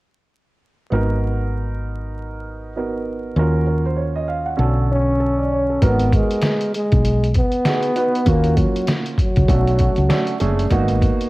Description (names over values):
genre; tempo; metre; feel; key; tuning
hip hop, jazz-hop; 98 BPM; 4/4; swing 60% on 16ths; G# dorian; A4 = 440 Hz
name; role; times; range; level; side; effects
warm upright piano; accompaniment; 0.9-11.3 s; D3 to F#5; -23 LUFS; right 3 dB; cassette tape
woody fretless electric bass; bass; 0.9-11.1 s; F#1 to D#2; -19 LUFS; equal; none
breathy trombone; melody; 4.9-10.4 s; F#3 to C#4; -20 LUFS; equal; cassette tape
trip hop sampler-style drum kit; drums; 5.8-11.3 s; hi-hat, kick drum, snare drum; -20 LUFS; equal; vintage 12-bit sampler grit, cassette tape
room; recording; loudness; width
light reverb, studio reverb; home recording on cassette, vinyl crackle; -16 LUFS; side -20 dB against mid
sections
0.9-5.8 A section; 5.8-11.3 B section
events
none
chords
0.9 G#m9; 3.4 D#m9; 4.6 Bm9; 5.8 G#m9; 8.3 D#m9; 9.5 Bm9; 10.7 G#m9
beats
| 0.92 1.53 2.14 2.75 | 3.37 3.98 4.59 5.20 | 5.82 6.43 7.04 7.65 | 8.27 8.88 9.49 10.10 | 10.71